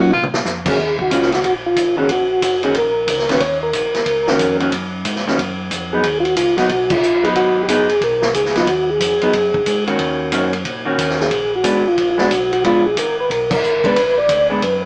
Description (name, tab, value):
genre	soul jazz organ trio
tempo	182 BPM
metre	4/4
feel	swing 63% on 8ths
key	Eb minor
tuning	A4 = 440 Hz
part	percussive tonewheel organ	melody	0.0-14.8 s	Gb3 to D5	-18 LUFS	equal	slow rotary speaker, chorus vibrato
part	mellow tonewheel organ	bass	0.0-14.9 s	Gb1 to Bb2	-32 LUFS	equal	chorus vibrato, slow rotary speaker
part	vintage drum kit	drums	0.1-14.7 s	crash cymbal, hi-hat, kick drum, ride cymbal, snare drum, toms	-24 LUFS	equal	none
part	vintage hollow-body jazz guitar	accompaniment	0.7-14.6 s	Eb3 to Gb4	-22 LUFS	equal	none
room	light reverb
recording	band playing live in one room, small speaker sound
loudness	-17 LUFS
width	mono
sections	0.8-14.9 A section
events	drum fill 0.1-0.5; band accent 6.9, 13.5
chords	0.1 Bb5; 0.8 Ebm7; 11.3 Bb7b9